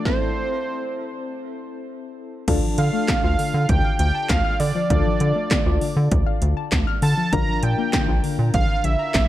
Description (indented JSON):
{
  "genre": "synth-pop",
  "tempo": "99 BPM",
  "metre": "4/4",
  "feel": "straight",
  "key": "D minor",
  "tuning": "A4 = 441 Hz",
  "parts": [
    { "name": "fat analog lead", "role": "melody", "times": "0.0-9.3 s", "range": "C5 to Bb5", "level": "-26 LUFS", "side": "right 3 dB", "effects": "tape echo" },
    { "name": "soft electric-piano-like synth keys", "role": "accompaniment", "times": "0.0-9.3 s", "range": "C4 to Bb4", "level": "-30 LUFS", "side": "left 2 dB", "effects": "chorus, tremolo, tape echo" },
    { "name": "soft round pluck", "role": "arpeggios", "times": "0.0-9.1 s", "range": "D3 to F6", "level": "-28 LUFS", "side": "left 5 dB", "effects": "chorus, tape echo" },
    { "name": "80s electronic pad drums", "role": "drums", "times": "0.1-9.3 s", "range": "crash cymbal, handclaps, hi-hat, kick drum, snare drum", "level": "-22 LUFS", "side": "equal", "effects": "none" },
    { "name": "rubbery square bass", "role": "bass", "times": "2.5-9.3 s", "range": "Bb1 to D3", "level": "-20 LUFS", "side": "equal", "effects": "none" }
  ],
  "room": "digital ambience",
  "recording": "echo-heavy mix",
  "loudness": "-18 LUFS",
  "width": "side -14 dB against mid",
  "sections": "0.0-2.5 A section; 2.5-9.3 B section",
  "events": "stop 0.1-2.5",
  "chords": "0.1 Am; 2.5 Dm; 7.3 Bb",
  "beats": "| 0.05 0.66 1.27 1.87 | 2.48 3.08 3.69 4.30 | 4.90 5.51 6.12 6.72 | 7.33 7.93 8.54 9.14"
}